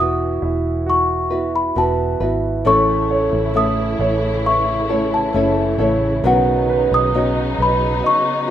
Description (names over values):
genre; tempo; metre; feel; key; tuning
pop ballad; 67 BPM; 4/4; straight; unclear; A4 = 440 Hz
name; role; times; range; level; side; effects
small celesta; melody; 0.0-8.5 s; F#5 to D#6; -19 LUFS; left 2 dB; plate reverb
clear concert grand piano; accompaniment; 0.0-8.5 s; E3 to E5; -21 LUFS; right 4 dB; plate reverb
nylon-string guitar; arpeggios; 0.0-8.5 s; A2 to B4; -23 LUFS; left 4 dB; plate reverb
vintage muted fingered electric bass; bass; 0.0-8.0 s; E1 to B1; -23 LUFS; equal; none
warm symphonic string section; sustained chords; 2.7-8.5 s; C#3 to E4; -24 LUFS; equal; plate reverb
room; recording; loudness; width
moderate studio reverb, RT60 0.6 s; rough home demo mix; -15 LUFS; side -10 dB against mid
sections
0.0-8.5 A section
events
none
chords
0.0 Esus2; 2.7 A; 6.2 Badd9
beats
0.87 1.77 | 2.66 3.56 4.45 5.35 | 6.24 7.14 8.03